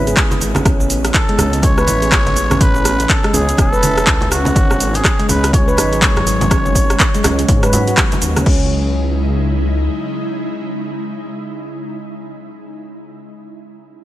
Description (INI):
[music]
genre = afro house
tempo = 123 BPM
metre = 4/4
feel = swing 60% on 16ths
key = C# minor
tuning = A4 = 440 Hz
[part]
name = ethereal airy pad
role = sustained chords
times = 0.0-12.4 s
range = C#3 to D#5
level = -25 LUFS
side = equal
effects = ensemble chorus, built-in reverb, sidechain pumping
[part]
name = handpan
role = arpeggios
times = 0.0-8.7 s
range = G#3 to B4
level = -21 LUFS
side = equal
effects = sidechain pumping, digital delay
[part]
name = dark detuned saw bass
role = bass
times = 0.0-9.9 s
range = E1 to G#2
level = -19 LUFS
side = equal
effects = sidechain pumping
[part]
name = afro-pop drum kit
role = drums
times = 0.1-8.6 s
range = crash cymbal, handclaps, hi-hat, rim click, shaker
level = -18 LUFS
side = equal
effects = overdrive, studio reverb
[part]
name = electronic kick drum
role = drums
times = 0.2-8.6 s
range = none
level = -15 LUFS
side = equal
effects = overdrive, studio reverb
[part]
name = congas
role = percussion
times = 0.2-8.4 s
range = none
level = -23 LUFS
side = right 1 dB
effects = none
[part]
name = trumpet with cup mute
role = melody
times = 1.1-7.9 s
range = F#4 to C#5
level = -20 LUFS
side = equal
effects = digital delay
[sound]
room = little or no reverb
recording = none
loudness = -12 LUFS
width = side -14 dB against mid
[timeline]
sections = 0.0-8.5 A section; 8.5-12.4 B section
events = drop 0.0-8.5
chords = 0.0 C#m7; 0.7 A; 4.6 G#7sus4; 8.5 C#m